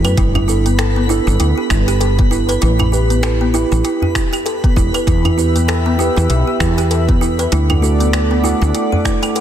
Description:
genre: organic downtempo.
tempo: 98 BPM.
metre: 4/4.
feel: swing 58% on 16ths.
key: E minor.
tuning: A4 = 440 Hz.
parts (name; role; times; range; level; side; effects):
mellow tine electric piano; accompaniment; 0.0-9.4 s; A3 to B4; -22 LUFS; right 3 dB; slow stereo tremolo, sidechain pumping, ping-pong delay.
kalimba; arpeggios; 0.0-9.4 s; B3 to B4; -19 LUFS; equal; ping-pong delay.
woody fretless electric bass; bass; 0.0-8.7 s; E1 to F#2; -15 LUFS; equal; sidechain pumping.
organic electronic drum kit; drums; 0.0-9.4 s; claves, finger snaps, hi-hat, shaker; -24 LUFS; right 2 dB; soft clipping on snare.
djembe; percussion; 0.0-9.2 s; none; -23 LUFS; equal; none.
twinkling granular texture; texture; 0.0-9.4 s; B4 to B5; -28 LUFS; equal; built-in reverb.
electronic kick drum; drums; 0.2-9.2 s; none; -16 LUFS; equal; none.
warm analog pad; sustained chords; 5.1-9.4 s; A4 to E6; -23 LUFS; equal; chorus, sidechain pumping.
room: light reverb, digital ambience.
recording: dense, heavily limited modern master.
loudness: -12 LUFS.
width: side -10 dB against mid.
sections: 0.0-9.4 A section.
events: none.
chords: 0.2 G6; 2.6 A5; 5.1 Em; 7.5 D.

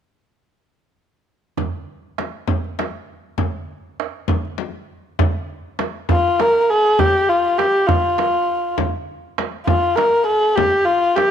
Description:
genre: Persian modal ensemble.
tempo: 67 BPM (dotted quarters).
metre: 6/8.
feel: straight.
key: unclear.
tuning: A4 = 440 Hz.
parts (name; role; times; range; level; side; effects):
frame drum; percussion; 1.6-11.3 s; none; -24 LUFS; left 5 dB; none.
tombak; percussion; 1.6-11.3 s; none; -23 LUFS; right 6 dB; none.
dark kamancheh; melody; 6.1-11.3 s; F4 to Bb4; -15 LUFS; left 1 dB; none.
room: moderate echo chamber reverb, RT60 1.6 s, small room ambience.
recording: 1960s-style stereo.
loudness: -16 LUFS.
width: side -9 dB against mid.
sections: 1.6-5.2 A section; 5.2-11.3 B section.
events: none.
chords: none.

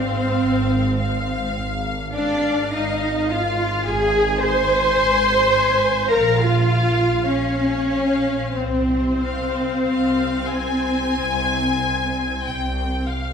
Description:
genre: classical, slow romantic movement for string orchestra.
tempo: 46-55 BPM.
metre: 4/4.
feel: rubato.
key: unclear.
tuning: A4 = 439 Hz.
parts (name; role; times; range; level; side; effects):
rich symphonic violin section; melody; 0.0-13.3 s; F5 to Ab5; -27 LUFS; left 5 dB; none.
rich symphonic violin section; second line; 0.0-13.1 s; C5 to C6; -26 LUFS; left 4 dB; none.
rich symphonic viola section; accompaniment; 0.0-13.1 s; C4 to C5; -25 LUFS; left 2 dB; none.
rich symphonic cello section; bass; 0.0-13.1 s; C4 to C5; -22 LUFS; right 2 dB; none.
warm symphonic double bass section; bass; 0.0-13.3 s; Ab1 to C2; -25 LUFS; right 2 dB; none.
room: wet scoring stage reverb, RT60 1.5 s.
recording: minimal, uncompressed stereo recording.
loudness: -18 LUFS.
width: side -7 dB against mid.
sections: 0.0-13.3 A section.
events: none.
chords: 0.0 Fm/Ab; 3.9 Ab; 6.1 Bbm; 8.5 Csus4.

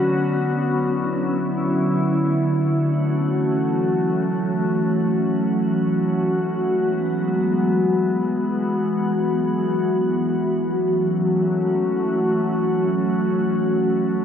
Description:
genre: hip hop.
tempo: free time.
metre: none.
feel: none.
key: unclear.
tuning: A4 = 439 Hz.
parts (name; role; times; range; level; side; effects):
glassy FM pad; solo; 0.0-14.2 s; D3 to F#4; -18 LUFS; equal; ensemble chorus, built-in reverb, low-pass filter, analog delay.
room: moderate plate reverb, RT60 3.5 s.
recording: dark, warm production.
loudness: -18 LUFS.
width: side -8 dB against mid.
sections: 0.0-2.7 A section; 2.7-14.2 B section.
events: filter sweep on ambient pad 0.0-2.7.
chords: 0.0 Bmadd9; 2.7 F#m7; 6.7 Eadd9; 10.6 A6.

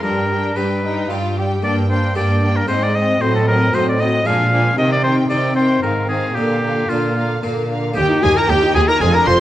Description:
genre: classical, baroque-style concerto movement with solo episodes.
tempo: 114 BPM.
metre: 3/4.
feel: straight.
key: Eb major.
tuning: A4 = 440 Hz.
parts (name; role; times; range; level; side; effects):
clear chamber violin section; melody; 0.0-9.4 s; Eb5 to C6; -25 LUFS; left 1 dB; none.
clear oboe; melody; 0.0-9.4 s; F4 to F5; -20 LUFS; left 1 dB; none.
rich chamber violin section; second line; 0.0-9.3 s; Bb3 to C5; -23 LUFS; left 1 dB; none.
harpsichord; accompaniment; 0.0-9.4 s; Eb2 to G4; -25 LUFS; equal; none.
rich studio viola section; accompaniment; 0.0-9.4 s; D3 to G4; -23 LUFS; equal; none.
warm chamber cello section; bass; 0.0-9.4 s; Eb2 to C3; -20 LUFS; right 1 dB; none.
rich chamber double bass section; bass; 8.0-9.4 s; F1 to Eb2; -21 LUFS; right 2 dB; none.
room: moderate recital hall reverb, RT60 1.4 s.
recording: worn, warbling old tape, cassette tape, warbly pitch drift.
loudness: -14 LUFS.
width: side -13 dB against mid.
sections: 0.0-8.0 A section; 8.0-9.4 B section.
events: none.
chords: 0.0 G; 1.6 Gm; 2.7 Ab; 3.2 Adim7; 4.3 Bb7; 4.8 Cm; 5.8 Fm7/Ab; 6.4 Bb; 8.0 Eb.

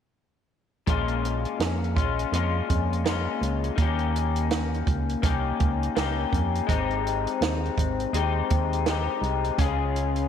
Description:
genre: indie pop, bedroom pop.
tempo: 83 BPM.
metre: 4/4.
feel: swing 60% on 16ths.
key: unclear.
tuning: A4 = 440 Hz.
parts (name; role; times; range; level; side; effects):
electric guitar through a small old amp; accompaniment; 0.9-10.3 s; Bb2 to Ab4; -27 LUFS; left 8 dB; analog chorus, warbly pitch drift.
organ-like FM bass; bass; 0.9-10.3 s; Ab1 to F2; -27 LUFS; right 1 dB; none.
compact cocktail drum kit; drums; 0.9-10.3 s; hi-hat, kick drum, snare drum; -28 LUFS; right 4 dB; none.
room: moderate echo chamber reverb, RT60 1.8 s, studio ambience.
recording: 1960s-style stereo.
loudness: -23 LUFS.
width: side -8 dB against mid.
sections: 0.9-10.3 A section.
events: none.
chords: 0.9 Bbm7; 3.8 Eb7; 6.7 Abmaj7; 9.6 Db.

